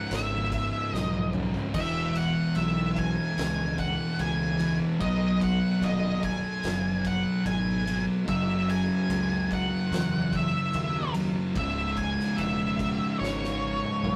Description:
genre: stoner and doom metal.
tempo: 73 BPM.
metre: 4/4.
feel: straight.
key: C# minor.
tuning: A4 = 440 Hz.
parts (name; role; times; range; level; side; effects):
octave-fuzz lead guitar; melody; 0.0-14.2 s; C#5 to G#5; -34 LUFS; equal; distortion.
thick fuzz guitar; riff; 0.0-14.2 s; C#2 to B3; -32 LUFS; equal; distortion.
thick fuzz guitar; riff; 0.0-14.2 s; C#2 to B3; -33 LUFS; equal; distortion.
growling fingered electric bass; bass; 0.1-14.2 s; C#1 to E2; -35 LUFS; equal; overdrive, tube saturation.
oversized low-tuned drum kit; drums; 0.1-14.2 s; crash cymbal, kick drum, ride cymbal, snare drum, toms; -39 LUFS; equal; none.
room: light reverb.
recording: rough rehearsal-room recording, tube saturation.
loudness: -27 LUFS.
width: mono.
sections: 0.0-14.2 A section.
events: drum fill 0.9-1.8, 13.2-14.2.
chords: 0.0 C#m; 1.8 E; 5.0 B; 8.3 F#5; 11.6 C#m.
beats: 0.12 0.94 | 1.75 2.57 3.38 4.20 | 5.02 5.83 6.65 7.47 | 8.29 9.11 9.93 10.75 | 11.57 12.40 13.22 14.05.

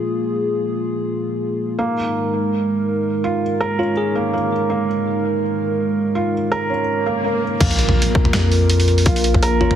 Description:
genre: half-time drum and bass.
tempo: 165 BPM.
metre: 4/4.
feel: swing 56% on 16ths, half-time.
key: unclear.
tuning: A4 = 440 Hz.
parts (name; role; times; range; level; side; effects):
dark analog pad; sustained chords; 0.0-9.8 s; Ab3 to Bb4; -20 LUFS; right 1 dB; chorus, vintage 12-bit sampler grit, sidechain pumping.
felt-muted upright piano; arpeggios; 1.8-9.8 s; Bb3 to Bb4; -23 LUFS; right 2 dB; vintage 12-bit sampler grit, ping-pong delay.
bell-like FM electric piano; melody; 3.8-4.5, 9.6-9.8 s; F4 to Ab4; -24 LUFS; left 3 dB; chorus, tremolo, ping-pong delay.
swell and impact; sound effects; 7.0-9.1 s; none; -24 LUFS; left 1 dB; none.
long sustained 808-style bass; bass; 7.6-9.8 s; Bb1 to F2; -18 LUFS; left 1 dB; none.
boom bap sampler-style drum kit; drums; 7.6-9.8 s; crash cymbal, hi-hat, snare drum, toms; -21 LUFS; equal; low-pass filter on cymbals, studio reverb, low-pass filter on hats, low-pass filter on toms, low-pass filter on snare.
electronic kick drum; drums; 7.6-9.4 s; none; -17 LUFS; left 1 dB; overdrive, studio reverb.
room: light reverb.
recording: heavily compressed radio sound, multiband compression.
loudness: -16 LUFS.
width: side -9 dB against mid.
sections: 0.0-7.6 A section; 7.6-9.8 B section.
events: swell 7.0-7.6; drop 7.6-9.8; impact 7.6-9.1.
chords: 0.0 Bb5; 1.8 Ab5; 7.6 Bb5.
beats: | 0.33 0.70 1.06 1.43 | 1.79 2.15 2.52 2.88 | 3.24 3.61 3.97 4.33 | 4.70 5.06 5.42 5.79 | 6.15 6.52 6.88 7.24 | 7.61 7.97 8.33 8.70 | 9.06 9.43.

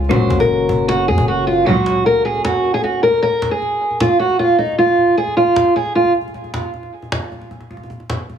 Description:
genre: hip hop, trap.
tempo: 154 BPM.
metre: 4/4.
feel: half-time.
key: unclear.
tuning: A4 = 437 Hz.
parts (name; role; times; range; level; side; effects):
soft electric-piano-like synth keys; accompaniment; 0.0-3.2 s; Bb3 to Gb4; -22 LUFS; left 8 dB; chorus, low-pass filter.
warm 808-style bass; bass; 0.0-1.6 s; Gb1 to Gb2; -20 LUFS; equal; none.
cajon; drums; 0.0-8.3 s; none; -26 LUFS; equal; none.
picked old ladder-braced acoustic guitar; melody; 0.1-6.1 s; Eb4 to C5; -15 LUFS; right 1 dB; low-pass filter, tape echo.
dark chamber string section; stabs; 0.1-1.9 s; Db2 to Gb3; -20 LUFS; right 2 dB; none.
room: light reverb, studio reverb.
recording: heavily compressed radio sound, multiband compression, small room ambience.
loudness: -14 LUFS.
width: side -8 dB against mid.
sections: 0.0-3.2 A section; 3.2-8.4 B section.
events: kick muted 1.7-3.2, 3.2-8.4; break 6.3-8.4.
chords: 0.1 Gb; 3.2 N.C..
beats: | 0.11 0.50 0.89 1.28 | 1.67 2.06 2.45 2.84 | 3.23 3.62 4.00 4.39 | 4.78 5.17 5.56 5.95 | 6.34 6.73 7.12 7.51 | 7.90 8.29.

